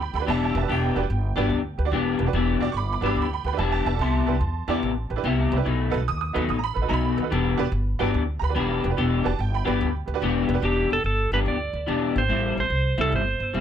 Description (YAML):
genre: electric blues shuffle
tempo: 145 BPM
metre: 4/4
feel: swing 67% on 8ths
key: E minor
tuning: A4 = 440 Hz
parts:
  - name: honky-tonk upright piano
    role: accompaniment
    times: 0.0-10.6 s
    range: D4 to D#6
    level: -28 LUFS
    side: right 10 dB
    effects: none
  - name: upright bass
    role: bass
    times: 0.0-13.6 s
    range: E1 to E2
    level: -25 LUFS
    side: equal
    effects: none
  - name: electric guitar through a small old amp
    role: riff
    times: 0.3-13.6 s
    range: A2 to G4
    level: -25 LUFS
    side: left 6 dB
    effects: analog chorus
  - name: clean lap steel guitar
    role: melody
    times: 10.7-13.6 s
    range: G4 to D5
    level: -25 LUFS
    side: right 3 dB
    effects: none
room: light reverb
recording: none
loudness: -21 LUFS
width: side -9 dB against mid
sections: 0.0-10.6 A section; 10.6-13.6 B section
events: none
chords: 0.0 Em7; 4.0 Cmaj7; 5.7 B7; 7.3 Em7; 12.3 Am7